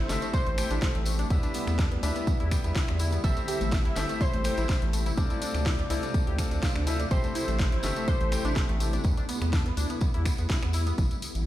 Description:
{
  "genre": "progressive house",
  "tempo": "124 BPM",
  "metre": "4/4",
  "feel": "straight",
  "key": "A minor",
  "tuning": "A4 = 440 Hz",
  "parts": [
    { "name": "plucky unison lead", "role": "melody", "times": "0.0-8.7 s", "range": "C5 to E5", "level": "-37 LUFS", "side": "equal", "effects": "sidechain pumping, dub echo" },
    { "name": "soft round pluck", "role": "second line", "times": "0.0-8.7 s", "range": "C6 to E6", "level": "-44 LUFS", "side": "right 1 dB", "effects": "none" },
    { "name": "shimmering ambient pad", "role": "sustained chords", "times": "0.0-11.0 s", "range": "C3 to E4", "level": "-38 LUFS", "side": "left 1 dB", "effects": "chorus, built-in reverb, sidechain pumping" },
    { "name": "tight sequenced synth", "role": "arpeggios", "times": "0.0-11.0 s", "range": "A3 to A4", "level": "-36 LUFS", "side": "equal", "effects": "chorus, sidechain pumping, dub echo" },
    { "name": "bright grand piano", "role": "stabs", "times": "0.0-9.0 s", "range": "C4 to G5", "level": "-35 LUFS", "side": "left 2 dB", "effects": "sidechain pumping, dub echo" },
    { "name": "round analog bass", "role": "bass", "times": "0.0-11.5 s", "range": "G1 to E2", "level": "-28 LUFS", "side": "equal", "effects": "sidechain pumping" },
    { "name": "house drum kit", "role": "drums", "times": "0.1-11.4 s", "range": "finger snaps, hi-hat, snare drum", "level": "-37 LUFS", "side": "left 1 dB", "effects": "overdrive" },
    { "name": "tambourine", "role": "percussion", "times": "0.1-11.4 s", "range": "none", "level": "-41 LUFS", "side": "left 1 dB", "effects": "none" },
    { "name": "electronic kick drum", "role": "drums", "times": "0.3-11.1 s", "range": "none", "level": "-27 LUFS", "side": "equal", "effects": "overdrive" }
  ],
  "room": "light reverb",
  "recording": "played on a big sound system in a bare room, stone room reverb",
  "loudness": "-25 LUFS",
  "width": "side -14 dB against mid",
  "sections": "0.0-11.5 A section",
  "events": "none",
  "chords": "0.0 Am7; 1.3 Em7; 3.2 Am7; 5.2 Dm7; 7.1 Am7; 9.0 Em7"
}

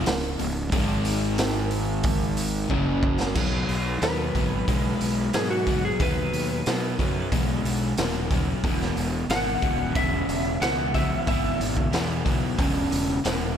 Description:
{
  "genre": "classic rock",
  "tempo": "91 BPM",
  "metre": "4/4",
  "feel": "straight",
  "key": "unclear",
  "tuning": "A4 = 440 Hz",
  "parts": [
    { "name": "crunchy overdriven guitar", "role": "riff", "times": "0.0-13.5 s", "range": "Db2 to Ab3", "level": "-29 LUFS", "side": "left 9 dB", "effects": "none" },
    { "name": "raw garage guitar", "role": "riff", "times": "0.0-13.5 s", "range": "Db2 to Ab3", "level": "-31 LUFS", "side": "right 9 dB", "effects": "overdrive, slapback echo" },
    { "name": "fuzz fingered electric bass", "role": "bass", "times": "0.0-13.6 s", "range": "Db1 to Cb3", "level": "-29 LUFS", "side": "equal", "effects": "overdrive" },
    { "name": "raw garage drum kit", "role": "drums", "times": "0.1-13.4 s", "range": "crash cymbal, hi-hat, kick drum, snare drum", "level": "-27 LUFS", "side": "right 1 dB", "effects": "none" },
    { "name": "electric slide guitar", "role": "melody", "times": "4.0-11.6 s", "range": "Gb4 to Gb5", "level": "-29 LUFS", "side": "equal", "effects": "slapback echo, tape echo" }
  ],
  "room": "moderate lush hall reverb, RT60 2.8 s",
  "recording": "big arena sound",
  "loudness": "-22 LUFS",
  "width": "side -8 dB against mid",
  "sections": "0.0-3.4 A section; 3.4-13.6 B section",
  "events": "drum fill 2.7-3.4; electric slide guitar solo 3.4-13.6",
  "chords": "0.0 Db5; 0.7 Ab5; 2.7 Gb5; 3.4 Cb; 8.6 E"
}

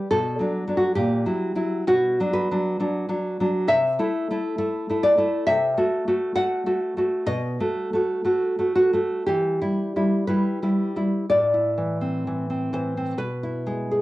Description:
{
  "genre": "romantic piece for solo classical guitar",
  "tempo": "59-70 BPM",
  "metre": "2/4",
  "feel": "rubato",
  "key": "E minor",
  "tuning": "A4 = 440 Hz",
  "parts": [
    { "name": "nylon-string guitar", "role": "solo", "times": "0.0-14.0 s", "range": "A2 to F#5", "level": "-21 LUFS", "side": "equal", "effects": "cassette tape" }
  ],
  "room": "wet studio reverb, RT60 0.6 s",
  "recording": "home recording on cassette",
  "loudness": "-21 LUFS",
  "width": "side -17 dB against mid",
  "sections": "0.0-11.3 A section; 11.3-14.0 B section",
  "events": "none",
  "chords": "0.1 Bm; 1.0 F#7/A#; 1.9 Bm; 3.7 Am/C; 5.5 F#m7b5/C; 7.3 B7; 9.2 Em; 11.3 Am; 13.2 E/B"
}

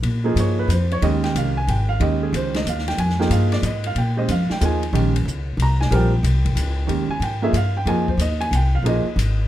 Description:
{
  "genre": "modal jazz",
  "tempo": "184 BPM",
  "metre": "3/4",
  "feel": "swing 64% on 8ths",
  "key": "Bb dorian",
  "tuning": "A4 = 440 Hz",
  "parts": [
    { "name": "upright bass", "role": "bass", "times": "0.0-9.5 s", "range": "Ab1 to Bb2", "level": "-20 LUFS", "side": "equal", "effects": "none" },
    { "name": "open jazz drum kit", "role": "drums", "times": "0.0-9.3 s", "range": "hi-hat, kick drum, ride cymbal, snare drum", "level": "-30 LUFS", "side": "left 3 dB", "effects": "none" },
    { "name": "warm concert grand piano", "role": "accompaniment", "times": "0.2-9.4 s", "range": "Eb3 to Bb5", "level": "-23 LUFS", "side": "right 3 dB", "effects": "none" }
  ],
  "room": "little or no reverb",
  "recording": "dark, warm production",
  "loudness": "-18 LUFS",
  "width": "side -13 dB against mid",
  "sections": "0.0-9.5 A section",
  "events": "none",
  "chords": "0.0 Bb9sus4"
}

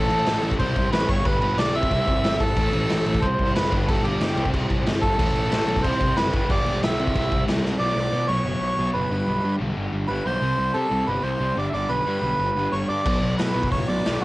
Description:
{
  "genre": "punk rock",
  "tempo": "183 BPM",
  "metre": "4/4",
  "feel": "straight",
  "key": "unclear",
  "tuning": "A4 = 440 Hz",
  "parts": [
    { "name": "melodica", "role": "melody", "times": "0.0-14.2 s", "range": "F#4 to E6", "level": "-25 LUFS", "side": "right 1 dB", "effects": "cassette tape" },
    { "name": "crunchy overdriven guitar", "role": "riff", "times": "0.0-14.2 s", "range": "G2 to C4", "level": "-29 LUFS", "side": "left 1 dB", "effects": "none" },
    { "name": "overdriven semi-hollow guitar", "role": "riff", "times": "0.0-14.2 s", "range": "G2 to C5", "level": "-30 LUFS", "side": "equal", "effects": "none" },
    { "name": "fuzz picked electric bass", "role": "bass", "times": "0.0-14.2 s", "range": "F#1 to C3", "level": "-27 LUFS", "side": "equal", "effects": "overdrive" },
    { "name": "raw garage drum kit", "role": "drums", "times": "0.1-7.7, 13.1-14.1 s", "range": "crash cymbal, hi-hat, kick drum, snare drum", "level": "-24 LUFS", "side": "equal", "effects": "cassette tape" }
  ],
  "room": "studio ambience",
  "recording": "home recording on cassette",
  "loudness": "-20 LUFS",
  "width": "side -19 dB against mid",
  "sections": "0.0-7.8 A section; 7.8-14.2 B section",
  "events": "drum fill 7.6",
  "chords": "0.0 A; 0.6 C; 1.1 G; 1.7 C; 2.6 A; 3.2 C; 3.7 G; 4.4 C; 5.2 A; 5.8 C; 6.3 G; 7.0 C; 7.8 Bm; 9.1 G; 10.4 C5; 11.6 G; 13.1 Bm"
}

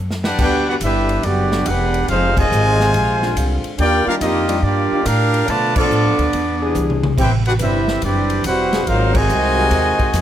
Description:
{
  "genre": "jazz, big band swing",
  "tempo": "142 BPM",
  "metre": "4/4",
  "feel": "swing 66% on 8ths",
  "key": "unclear",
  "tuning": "A4 = 440 Hz",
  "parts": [
    { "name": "upright bass", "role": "bass", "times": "0.0-10.2 s", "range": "E1 to B2", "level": "-20 LUFS", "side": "equal", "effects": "none" },
    { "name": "swinging big-band drum kit", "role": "drums", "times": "0.1-10.2 s", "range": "crash cymbal, hi-hat, kick drum, ride cymbal, snare drum, toms", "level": "-24 LUFS", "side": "equal", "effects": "none" },
    { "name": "brilliant trumpet section", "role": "stabs", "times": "0.2-0.8 s", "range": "D4 to F#5", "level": "-23 LUFS", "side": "left 1 dB", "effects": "none" },
    { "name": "bright trumpet section", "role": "melody", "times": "0.4-10.2 s", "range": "Bb3 to A5", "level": "-18 LUFS", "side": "equal", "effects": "none" },
    { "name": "mellow trombone section", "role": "second line", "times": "0.4-10.2 s", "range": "C3 to Bb4", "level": "-21 LUFS", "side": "right 2 dB", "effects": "none" },
    { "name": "mellow trombone section", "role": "sustained chords", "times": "0.4-9.7 s", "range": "C3 to B4", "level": "-26 LUFS", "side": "left 2 dB", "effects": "none" }
  ],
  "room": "light reverb",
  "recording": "none",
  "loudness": "-14 LUFS",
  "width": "side -11 dB against mid",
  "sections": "0.4-10.2 A section",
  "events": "drum fill 0.0-0.4, 6.8-7.2; band accent 2.3, 5.7, 9.1",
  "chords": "0.4 Gmaj7; 2.1 Fm7; 2.9 Bb9; 3.8 Ebmaj9; 5.5 Bm7b5; 6.3 E7b13; 7.2 Am11; 8.9 Ab13"
}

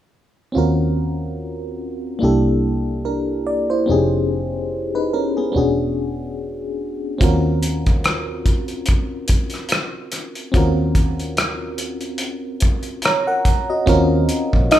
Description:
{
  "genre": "R&B, neo-soul",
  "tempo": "72 BPM",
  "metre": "4/4",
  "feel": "swing 56% on 16ths",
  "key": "Eb dorian",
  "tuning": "A4 = 440 Hz",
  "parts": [
    { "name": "FM electric piano with auto-pan", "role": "accompaniment", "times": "0.5-14.8 s", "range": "Bb3 to Bb5", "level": "-21 LUFS", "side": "equal", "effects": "none" },
    { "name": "vintage muted fingered electric bass", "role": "bass", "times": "0.6-14.7 s", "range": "E1 to Eb2", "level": "-22 LUFS", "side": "equal", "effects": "none" },
    { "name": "cloth-damped thuddy drum kit", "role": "drums", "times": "7.2-14.8 s", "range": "hi-hat, kick drum, rim click", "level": "-18 LUFS", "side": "equal", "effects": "none" },
    { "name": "soft octave-layered synth lead", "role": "melody", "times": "14.7-14.8 s", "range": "Eb5", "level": "-10 LUFS", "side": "equal", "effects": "chorus, phaser" }
  ],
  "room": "moderate large studio reverb, RT60 0.9 s",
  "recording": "band playing live in one room",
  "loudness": "-17 LUFS",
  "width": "side -12 dB against mid",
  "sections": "0.5-13.9 A section",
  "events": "none",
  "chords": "0.5 Ebm7; 2.2 C7; 3.9 Fm7b5; 5.5 E9; 7.2 Ebm7"
}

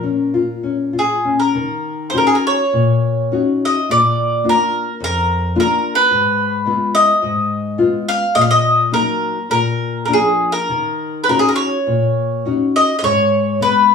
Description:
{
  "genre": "fado-style ballad",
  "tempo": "105 BPM",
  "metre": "4/4",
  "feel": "uneven beats, rubato",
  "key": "Eb minor",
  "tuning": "A4 = 440 Hz",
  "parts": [
    { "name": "mandolin", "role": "melody", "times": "0.0-13.9 s", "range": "Ab4 to F5", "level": "-15 LUFS", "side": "equal", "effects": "none" },
    { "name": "nylon-string guitar", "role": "accompaniment", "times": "0.0-13.9 s", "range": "F2 to Gb4", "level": "-18 LUFS", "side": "left 4 dB", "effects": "none" }
  ],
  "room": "wet studio reverb, RT60 0.6 s",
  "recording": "band playing live in one room, small room ambience",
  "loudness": "-14 LUFS",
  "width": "side -6 dB against mid",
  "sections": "0.0-1.5 A section; 1.5-13.9 B section",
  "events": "none",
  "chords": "0.0 Bbm; 1.5 Ebm7; 3.9 Bb; 6.1 Fdim/Ab; 8.3 Ebm/Bb; 9.5 Bb; 10.7 Ebm7; 13.0 Abm"
}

